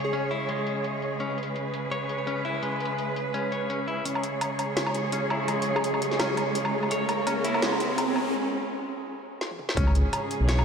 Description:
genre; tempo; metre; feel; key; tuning
half-time drum and bass; 168 BPM; 4/4; swing 55% on 16ths, half-time; unclear; A4 = 440 Hz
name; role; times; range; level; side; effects
plucky unison lead; melody; 0.0-0.3, 5.8-6.0 s; G#4; -36 LUFS; left 1 dB; none
rich studio cello section; sustained chords; 0.0-10.6 s; G#2 to C#5; -30 LUFS; right 2 dB; sidechain pumping
direct-recorded clean electric guitar; arpeggios; 0.0-10.6 s; G#3 to C#5; -31 LUFS; left 2 dB; vintage 12-bit sampler grit, low-pass filter, tape echo
drum and bass drum kit; drums; 0.0-10.6 s; hi-hat, snare drum, toms, woodblock; -31 LUFS; equal; low-pass filter on hats, low-pass filter on cymbals, low-pass filter on perc, low-pass filter on snare, low-pass filter on toms, low-pass filter on room
riser; sound effects; 5.5-8.3 s; none; -33 LUFS; right 1 dB; none
flickering grainy texture; texture; 4.4-10.6 s; G#4 to C#5; -37 LUFS; right 2 dB; built-in reverb
dark detuned saw bass; bass; 9.8-10.6 s; B1 to C#2; -22 LUFS; equal; none
electronic kick drum; drums; 9.8 s; none; -28 LUFS; equal; distortion
room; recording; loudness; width
wet cathedral reverb, RT60 4.6 s; dreamy mix soaked in reverb, high-pass filter; -25 LUFS; side -6 dB against mid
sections
0.0-4.1 A section; 4.1-9.8 B section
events
build-up 4.1-9.8; riser 5.5-8.3; break 8.3-9.8; drum fill 9.4-9.8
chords
0.0 C#5

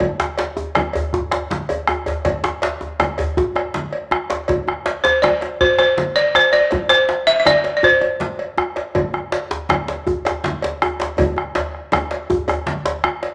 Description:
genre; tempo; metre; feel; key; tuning
west african traditional, West African drum ensemble; 107 BPM (dotted quarters); 12/8; straight; C major pentatonic; A4 = 440 Hz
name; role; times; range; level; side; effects
bombo; percussion; 0.0-13.2 s; none; -25 LUFS; equal; none
congas; percussion; 0.0-12.8 s; none; -31 LUFS; equal; none
cowbell; percussion; 0.0-13.3 s; none; -29 LUFS; equal; none
djembe; percussion; 0.0-13.3 s; none; -26 LUFS; equal; none
djembe; percussion; 0.2-5.4, 9.5-13.0 s; none; -28 LUFS; equal; none
balafon; melody; 5.0-8.7 s; C5 to E5; -16 LUFS; equal; none
room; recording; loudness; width
moderate large studio reverb, RT60 1.2 s; none; -19 LUFS; mono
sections
0.0-13.3 A section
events
drum fill 11.2-13.3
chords
none

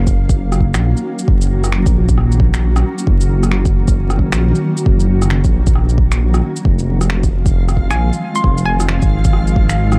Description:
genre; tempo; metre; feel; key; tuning
future garage; 134 BPM; 4/4; swing 61% on 16ths; unclear; A4 = 443 Hz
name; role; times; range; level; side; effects
granular cloud pad; sustained chords; 0.0-10.0 s; Eb3 to Gb4; -24 LUFS; equal; built-in reverb, sidechain pumping
dark detuned saw bass; bass; 0.0-10.0 s; F1 to Bb1; -17 LUFS; equal; sidechain pumping
electronic kick drum; drums; 0.1-9.7 s; none; -17 LUFS; equal; none
electronic shaker, rim click and finger snaps; drums; 0.1-10.0 s; none; -27 LUFS; equal; none
backwards swelling texture; texture; 7.5-10.0 s; F5; -32 LUFS; equal; built-in reverb
hollow square pluck; melody; 7.9-9.1 s; Ab5 to C6; -24 LUFS; equal; chorus, cassette tape, analog delay
room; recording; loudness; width
digital ambience; dry, gritty hardware recording, vinyl crackle; -15 LUFS; mono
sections
0.0-10.0 A section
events
none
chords
0.0 Gb6; 6.6 Fm7

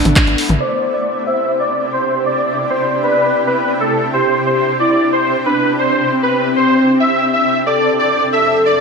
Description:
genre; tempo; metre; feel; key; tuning
uplifting trance; 136 BPM; 4/4; straight; C major; A4 = 441 Hz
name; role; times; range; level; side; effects
warm velvety synth lead; second line; 0.0-8.8 s; C4 to D5; -17 LUFS; left 1 dB; chorus, ping-pong delay
shimmering ambient pad; sustained chords; 0.0-8.8 s; F2 to C5; -21 LUFS; equal; chorus, built-in reverb, sidechain pumping
tight sequencer bass; bass; 0.0-0.6 s; A1; -17 LUFS; equal; tube saturation, sidechain pumping
punchy analog drum machine; drums; 0.1-0.7 s; crash cymbal, handclaps, hi-hat, toms; -16 LUFS; left 1 dB; low-pass filter on hats, low-pass filter on toms, low-pass filter on snare, low-pass filter on cymbals
dense compressed supersaw; melody; 0.6-8.8 s; A4 to E5; -15 LUFS; equal; sidechain pumping, low-pass filter, ping-pong delay
room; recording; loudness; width
moderate lush hall reverb, RT60 1.9 s, digital ambience; none; -13 LUFS; side -4 dB against mid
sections
0.6-8.8 A section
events
band accent 0.2; filter sweep on supersaw synth 0.6-8.8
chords
0.0 Asus2; 0.6 Cadd9; 7.7 F

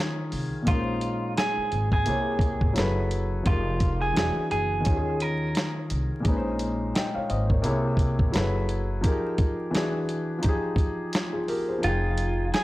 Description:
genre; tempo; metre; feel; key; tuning
lo-fi hip hop; 86 BPM; 4/4; swing 56% on 16ths; F minor; A4 = 440 Hz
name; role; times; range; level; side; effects
felt-muted upright piano; accompaniment; 0.0-12.6 s; Bb2 to G5; -28 LUFS; left 1 dB; cassette tape
upright bass; bass; 0.3-12.5 s; E1 to Eb2; -29 LUFS; equal; tube saturation
dusty soul sampler-style drum kit; drums; 0.3-12.6 s; hi-hat, kick drum, snare drum; -26 LUFS; equal; none
clean electric guitar; melody; 0.7-5.7, 11.8-12.6 s; F4 to Bb4; -28 LUFS; right 2 dB; none
room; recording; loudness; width
digital ambience; dry, gritty hardware recording, vinyl crackle; -23 LUFS; side -17 dB against mid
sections
0.0-11.8 A section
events
break 0.0-0.7; kick muted 11.8-12.6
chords
0.0 Eb9sus4; 0.7 Bbm11; 2.1 C7b9b13; 2.8 Gbm11; 3.5 Fm11; 4.2 E9; 4.9 Eb9sus4; 6.3 Bbm11; 7.6 C7b9b13; 8.3 Gbm11; 9.0 Fm11; 9.7 E9; 10.4 Fm9

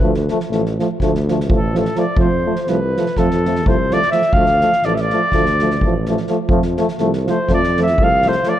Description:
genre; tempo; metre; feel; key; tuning
balkan folk, Balkan brass band; 249 BPM (eighths); 9/8; straight; D minor; A4 = 440 Hz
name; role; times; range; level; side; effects
warm flugelhorn; melody; 0.0-8.6 s; A4 to F5; -18 LUFS; equal; none
clear euphonium; accompaniment; 0.0-8.5 s; A3; -23 LUFS; left 6 dB; none
mellow trombone; accompaniment; 0.0-8.5 s; F3; -22 LUFS; right 6 dB; none
mellow tuba; bass; 0.0-8.4 s; A1 to F2; -21 LUFS; equal; none
soft-mallet drum kit; percussion; 0.1-8.5 s; kick drum, snare drum; -21 LUFS; equal; none
room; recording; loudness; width
light reverb; dark, warm production; -14 LUFS; side -12 dB against mid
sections
0.0-8.6 A section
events
flugelhorn solo 0.0-8.6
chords
0.0 Dm; 2.2 F; 4.3 Dm; 6.5 F

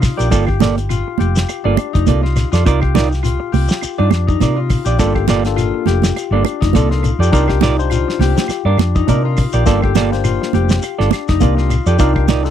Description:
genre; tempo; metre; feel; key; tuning
afrobeat; 103 BPM; 4/4; swing 56% on 16ths; G minor; A4 = 440 Hz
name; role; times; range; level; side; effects
concert harp; arpeggios; 0.0-12.5 s; D4 to G4; -22 LUFS; left 12 dB; none
semi-hollow electric guitar; stabs; 0.0-12.5 s; Bb3 to D5; -18 LUFS; right 10 dB; none
hollow-body short-scale fingered electric bass; bass; 0.0-12.5 s; F1 to C3; -16 LUFS; equal; none
damped 70s drum kit; drums; 0.0-12.5 s; hi-hat, kick drum, snare drum; -18 LUFS; equal; none
claves; percussion; 0.0-12.3 s; none; -32 LUFS; right 24 dB; none
shekere; percussion; 0.0-12.5 s; none; -23 LUFS; left 3 dB; none
congas; percussion; 0.3-12.5 s; none; -19 LUFS; right 16 dB; none
barky tine electric piano; accompaniment; 5.0-12.5 s; Bb3 to C5; -22 LUFS; left 14 dB; overdrive
room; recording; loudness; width
little or no reverb; dry, close 1970s-style studio recording; -13 LUFS; side -10 dB against mid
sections
0.0-12.5 A section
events
none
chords
0.3 Gm9; 2.7 Cm11; 5.0 Gm9; 7.3 Cm11; 9.7 Gm9; 12.0 Cm11

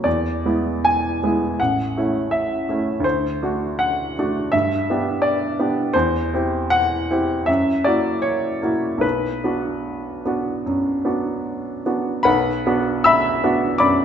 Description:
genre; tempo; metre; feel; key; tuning
classical, romantic character piece for solo piano; 72-86 BPM; 4/4; rubato; B minor; A4 = 439 Hz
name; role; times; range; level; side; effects
clear baby grand piano; solo; 0.0-14.0 s; A1 to E6; -18 LUFS; equal; none
room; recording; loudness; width
wet recital hall reverb, RT60 1.6 s; nothing above 7.9 kHz; -18 LUFS; side -8 dB against mid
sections
0.0-12.3 A section; 12.3-14.0 A section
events
none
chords
0.1 E7; 1.6 A; 3.0 D7; 4.5 G; 5.9 C/E; 7.5 F#7; 9.0 Bm

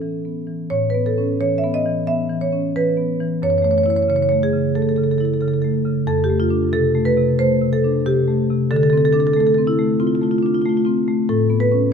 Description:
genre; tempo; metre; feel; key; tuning
classical, contemporary piece for solo marimba; 91 BPM; 4/4; uneven beats, rubato; unclear; A4 = 440 Hz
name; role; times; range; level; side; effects
marimba with medium mallets; solo; 0.0-11.9 s; F2 to E5; -16 LUFS; equal; none
room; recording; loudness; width
moderate scoring stage reverb, RT60 1.9 s; close, detailed microphones; -16 LUFS; side -6 dB against mid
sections
0.7-11.9 A section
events
none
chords
0.0 Aadd9 (rootless); 0.7 Aadd9; 3.4 F#m7; 6.1 F69; 8.7 Dm7; 11.3 Aadd9

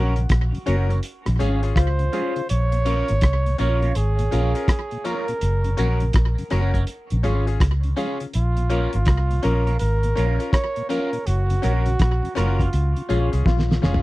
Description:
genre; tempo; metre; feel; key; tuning
roots reggae; 82 BPM; 4/4; swing 63% on 16ths; Bb minor; A4 = 441 Hz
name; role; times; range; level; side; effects
warm flugelhorn; melody; 0.0-13.4 s; F4 to Db5; -28 LUFS; right 3 dB; tape echo
electric guitar at the edge of break-up; accompaniment; 0.0-14.0 s; Db4 to Db5; -32 LUFS; right 6 dB; phaser, tape echo
mellow tonewheel organ; accompaniment; 0.0-13.9 s; Gb2 to Db4; -31 LUFS; left 3 dB; slow rotary speaker, slapback echo
bright grand piano; stabs; 0.0-14.0 s; Db4 to Bb4; -28 LUFS; left 4 dB; none
vintage muted fingered electric bass; bass; 0.0-14.0 s; F1 to Db2; -20 LUFS; equal; none
cloth-damped thuddy drum kit; drums; 0.2-14.0 s; hi-hat, kick drum, rim click, snare drum, toms; -22 LUFS; equal; slapback echo
dark trombone; second line; 1.4-2.5, 13.1-14.0 s; Db4 to F4; -30 LUFS; left 9 dB; tape echo
room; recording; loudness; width
little or no reverb; dry, close 1970s-style studio recording; -19 LUFS; side -18 dB against mid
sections
0.0-14.0 A section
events
band accent 0.0-2.5, 11.3-14.0; drum fill 13.5-14.0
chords
0.0 Gb; 1.0 Db; 2.5 Bbm; 5.4 Gb; 6.9 Db; 8.3 Bbm; 11.3 Gb; 12.7 Db

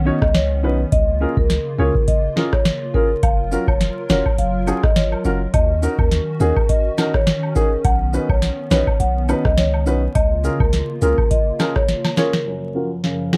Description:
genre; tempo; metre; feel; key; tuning
dancehall; 104 BPM; 4/4; swing 56% on 16ths; F# major; A4 = 440 Hz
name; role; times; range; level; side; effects
hollow soft pad; sustained chords; 0.0-13.4 s; F#2 to A#4; -30 LUFS; equal; ensemble chorus, sidechain pumping, low-pass filter
punchy sub bass; bass; 0.0-11.1 s; E#1 to D#2; -22 LUFS; equal; none
warm baby grand piano; accompaniment; 0.1-13.4 s; F#2 to C#5; -25 LUFS; equal; low-pass filter
marimba with soft mallets; melody; 0.2-12.3 s; A#4 to F#5; -25 LUFS; equal; analog delay
booming analog drum machine; drums; 0.2-13.4 s; hi-hat, kick drum, rim click, snare drum; -21 LUFS; equal; none
woodblock and cabasa; percussion; 3.2-12.3 s; none; -36 LUFS; equal; none
room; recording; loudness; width
little or no reverb; dark, warm production, vinyl crackle; -18 LUFS; mono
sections
0.0-12.5 A section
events
drum fill 11.9-12.5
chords
0.0 Badd9; 0.9 C#6; 3.2 F#maj7; 5.5 D#m7; 7.8 Badd9; 10.2 C#6; 12.5 F#maj7

